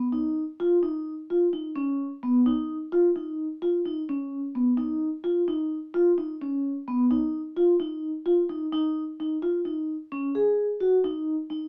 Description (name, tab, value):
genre	progressive instrumental, progressive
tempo	259 BPM (eighths)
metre	5/8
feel	straight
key	unclear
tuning	A4 = 441 Hz
part	vibraphone with soft mallets	solo	0.0-11.6 s	B3 to G#4	-26 LUFS	equal	none
room	moderate studio reverb, RT60 0.5 s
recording	none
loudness	-26 LUFS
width	mono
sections	0.0-8.7 A section; 8.7-11.7 B section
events	none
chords	none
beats	0.14 0.37 | 0.60 0.83 1.07 1.30 1.53 | 1.76 2.00 2.23 2.46 2.69 | 2.92 3.16 3.39 3.62 3.85 | 4.08 4.32 4.55 4.78 5.01 | 5.25 5.48 5.71 5.94 6.17 | 6.41 6.64 6.87 7.10 7.33 | 7.56 7.80 8.03 8.26 8.49 | 8.72 8.95 9.19 9.42 9.65 | 9.88 10.11 10.34 10.57 10.80 | 11.04 11.27 11.50